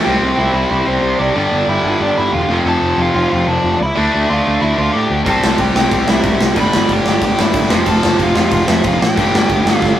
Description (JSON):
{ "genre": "punk rock", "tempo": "184 BPM", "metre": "4/4", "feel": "straight", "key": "unclear", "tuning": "A4 = 439 Hz", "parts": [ { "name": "nasal lead guitar with a parked wah", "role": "melody", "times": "0.0-10.0 s", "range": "C4 to B5", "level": "-19 LUFS", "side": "equal", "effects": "overdrive" }, { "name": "distorted electric guitar", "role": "riff", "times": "0.0-10.0 s", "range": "F2 to D4", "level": "-16 LUFS", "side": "equal", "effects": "overdrive" }, { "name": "fuzz picked electric bass", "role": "bass", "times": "0.1-9.9 s", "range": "E1 to A2", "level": "-19 LUFS", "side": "equal", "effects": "overdrive" }, { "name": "big rock drum kit", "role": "drums", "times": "5.3-9.9 s", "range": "crash cymbal, kick drum, snare drum", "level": "-16 LUFS", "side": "equal", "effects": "none" } ], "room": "light reverb", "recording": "rough rehearsal-room recording", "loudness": "-12 LUFS", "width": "side -11 dB against mid", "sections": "0.0-10.0 A section", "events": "drum fill 9.8", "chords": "0.0 C; 1.4 G5; 2.5 F; 4.0 Dm; 5.3 C; 6.6 G; 7.7 F; 9.2 G5" }